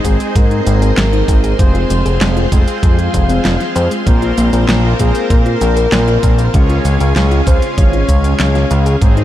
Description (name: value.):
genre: synthwave.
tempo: 97 BPM.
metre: 4/4.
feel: straight.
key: unclear.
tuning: A4 = 438 Hz.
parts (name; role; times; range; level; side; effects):
soft octave-layered synth lead; melody; 0.0-9.0 s; F4 to Db5; -21 LUFS; left 1 dB; chorus, cassette tape, ping-pong delay.
string machine, full ensemble; sustained chords; 0.0-9.2 s; Db4 to C6; -22 LUFS; equal; ensemble chorus, vintage 12-bit sampler grit, sidechain pumping.
thumb-piano-like synth pluck; arpeggios; 0.0-9.2 s; Ab3 to F5; -21 LUFS; left 3 dB; chorus, cassette tape, tape echo.
mellow synth brass; stabs; 0.0-9.2 s; Ab3 to F5; -21 LUFS; right 1 dB; chorus, cassette tape, tape echo.
fat analog bass; bass; 0.0-9.2 s; F1 to Bb2; -14 LUFS; equal; sidechain pumping.
electronic kick drum; drums; 0.0-9.1 s; none; -12 LUFS; equal; small room reverb.
pop drum kit; drums; 0.0-9.2 s; handclaps, hi-hat, shaker, snare drum; -20 LUFS; equal; small room reverb.
room: light reverb, digital ambience.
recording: dark, warm production.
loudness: -10 LUFS.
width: side -13 dB against mid.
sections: 0.0-9.2 A section.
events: none.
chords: 0.0 Ab; 1.6 Fm; 4.1 Bbsus2; 6.5 Db.